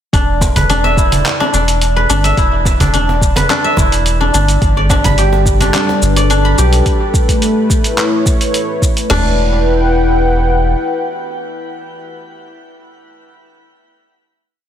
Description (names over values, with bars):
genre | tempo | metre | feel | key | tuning
organic downtempo | 107 BPM | 4/4 | straight | E dorian | A4 = 438 Hz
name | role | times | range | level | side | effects
guzheng | arpeggios | 0.1-11.9 s | D4 to B5 | -16 LUFS | left 1 dB | tape echo, shimmer reverb
warm sub bass | bass | 0.1-10.7 s | E1 to B1 | -14 LUFS | equal | sidechain pumping
afro-pop drum kit | drums | 0.1-9.2 s | crash cymbal, kick drum, snare drum, toms | -15 LUFS | equal | none
dusty soul sampler-style drum kit | drums | 0.1-9.1 s | handclaps, hi-hat, shaker | -19 LUFS | equal | none
cajon | percussion | 0.4-6.0 s | none | -21 LUFS | right 3 dB | none
warm analog pad | sustained chords | 4.6-12.1 s | G3 to G5 | -17 LUFS | left 1 dB | chorus, sidechain pumping, shimmer reverb
room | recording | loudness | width
light reverb | dense, heavily limited modern master | -10 LUFS | side -10 dB against mid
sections
0.1-9.1 groove; 9.1-11.3 final chord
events
none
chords
0.1 E7(no3); 4.6 G; 6.9 A; 9.1 Em7